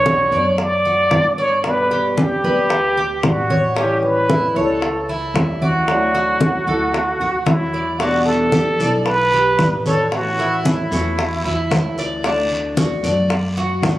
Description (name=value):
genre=latin, Cuban son and guajira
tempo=113 BPM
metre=4/4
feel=straight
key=D major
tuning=A4 = 440 Hz
part: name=trumpet with plunger mute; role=melody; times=0.0-11.7 s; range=E4 to D5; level=-18 LUFS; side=right 1 dB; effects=none
part: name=flamenco guitar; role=accompaniment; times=0.0-14.0 s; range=B2 to G4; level=-24 LUFS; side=left 2 dB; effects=none
part: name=Cuban tres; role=arpeggios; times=0.0-14.0 s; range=C#4 to D5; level=-24 LUFS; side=right 1 dB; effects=none
part: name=upright bass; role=bass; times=0.0-14.0 s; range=A1 to G2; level=-25 LUFS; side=equal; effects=none
part: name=bongos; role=percussion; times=0.1-14.0 s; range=none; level=-24 LUFS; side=left 2 dB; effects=none
part: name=congas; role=percussion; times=0.1-14.0 s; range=none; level=-21 LUFS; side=left 1 dB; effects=none
part: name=guiro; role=percussion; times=8.0-14.0 s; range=none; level=-32 LUFS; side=left 1 dB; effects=none
room=light reverb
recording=recorded on a phone in the room, club reverb, compression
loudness=-15 LUFS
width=side -15 dB against mid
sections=0.0-14.0 A section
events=none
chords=0.0 Bm; 1.6 G; 3.8 A7; 5.9 Dadd9; 8.0 Em7; 10.1 A6; 12.2 D